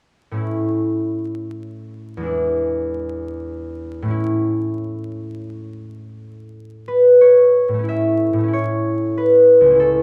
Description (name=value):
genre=classical, solo harp piece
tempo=87-102 BPM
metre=3/4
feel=rubato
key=A major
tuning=A4 = 439 Hz
part: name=concert harp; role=solo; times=0.3-10.0 s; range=C#2 to E5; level=-18 LUFS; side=equal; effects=none
room=wet recital hall reverb, RT60 1.3 s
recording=vinyl crackle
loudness=-16 LUFS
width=mono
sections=0.4-7.9 A section; 7.9-10.0 B section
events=none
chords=0.4 A